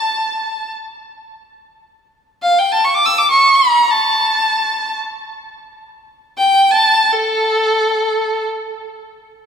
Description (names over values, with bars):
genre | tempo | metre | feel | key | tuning
Arabic maqam ensemble | free time | none | none | A maqam hijaz | A4 = 440 Hz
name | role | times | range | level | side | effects
clear violin | solo | 0.0-8.5 s | A4 to E6 | -13 LUFS | equal | none
room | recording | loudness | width
wet church reverb, RT60 3.1 s | recorded in a church or concert hall | -12 LUFS | side -7 dB against mid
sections
0.0-9.0 A section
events
none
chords
none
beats
free time